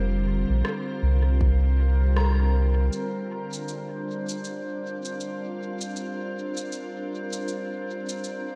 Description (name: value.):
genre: ambient dub.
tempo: 79 BPM.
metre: 4/4.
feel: swing 60% on 16ths.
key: unclear.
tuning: A4 = 443 Hz.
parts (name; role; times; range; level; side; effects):
soft additive organ-like pad; sustained chords; 0.0-8.6 s; D3 to Bb4; -34 LUFS; equal; ensemble chorus, built-in reverb.
soft synth bell; arpeggios; 0.0-3.9 s; Bb5; -42 LUFS; equal; chorus, phaser, analog delay.
soft dub sub bass; bass; 0.0-2.9 s; F1 to C2; -23 LUFS; equal; tube saturation.
drifting glass-harmonics texture; texture; 0.0-8.6 s; C5; -39 LUFS; equal; chorus, built-in reverb.
electronic rim click and shaker; drums; 0.6-8.4 s; none; -38 LUFS; equal; dub echo.
electronic kick drum; drums; 1.4-1.6 s; none; -29 LUFS; equal; none.
room: moderate lush hall reverb, RT60 1.9 s, digital ambience.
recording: dreamy mix soaked in reverb.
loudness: -27 LUFS.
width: mono.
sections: 0.0-2.9 A section; 2.9-8.6 B section.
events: filter sweep on synth bell 0.0-2.9; band accent 2.2-2.5.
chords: 0.0 Fsus4.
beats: 0.65 1.40 2.16 | 2.92 3.68 4.44 5.20 | 5.96 6.72 7.48 8.24.